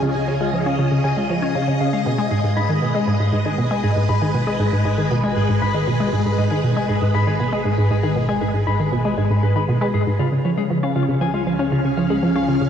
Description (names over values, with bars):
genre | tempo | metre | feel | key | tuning
ambient, sequencer-driven space music | 118 BPM | 4/4 | straight | G# dorian | A4 = 440 Hz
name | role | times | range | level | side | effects
phased string machine | sustained chords | 0.0-12.7 s | C#3 to E#5 | -23 LUFS | right 1 dB | ensemble chorus, phaser, cassette tape
clean electric guitar | arpeggios | 0.0-12.6 s | E#4 to B5 | -26 LUFS | left 6 dB | auto-pan, low-pass filter, cassette tape, ping-pong delay
resonant blip pluck | riff | 0.0-12.7 s | G#2 to C#4 | -19 LUFS | equal | chorus, cassette tape, ping-pong delay
analog drone | bass | 0.0-12.7 s | G#1 to C#2 | -38 LUFS | right 1 dB | none
room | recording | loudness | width
moderate lush hall reverb, RT60 2.5 s | home recording on cassette | -17 LUFS | side -8 dB against mid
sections
0.0-12.7 A section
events
none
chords
0.0 C#; 2.1 G#m; 10.2 C#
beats
| 0.03 0.53 1.04 1.55 | 2.06 2.57 3.08 3.58 | 4.09 4.60 5.11 5.62 | 6.13 6.64 7.14 7.65 | 8.16 8.67 9.18 9.69 | 10.20 10.70 11.21 11.72 | 12.23